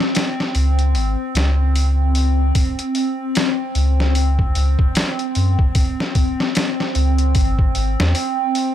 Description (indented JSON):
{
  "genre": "trip hop",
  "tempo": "75 BPM",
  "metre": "4/4",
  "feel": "swing 59% on 16ths",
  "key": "unclear",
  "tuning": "A4 = 439 Hz",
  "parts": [
    { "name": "warbly tape-like pad", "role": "sustained chords", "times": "0.0-8.7 s", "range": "B#3", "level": "-22 LUFS", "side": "equal", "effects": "chorus, built-in reverb, phaser" },
    { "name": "trip hop sampler-style drum kit", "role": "drums", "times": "0.0-8.7 s", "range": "hi-hat, kick drum, snare drum", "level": "-20 LUFS", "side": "equal", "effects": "none" },
    { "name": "soft dub sub bass", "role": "bass", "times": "0.6-8.1 s", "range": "G#1 to F#2", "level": "-16 LUFS", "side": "equal", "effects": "transformer saturation" }
  ],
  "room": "little or no reverb",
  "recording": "dry, gritty hardware recording",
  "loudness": "-16 LUFS",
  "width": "side -11 dB against mid",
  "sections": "0.0-8.7 A section",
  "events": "none",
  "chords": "none"
}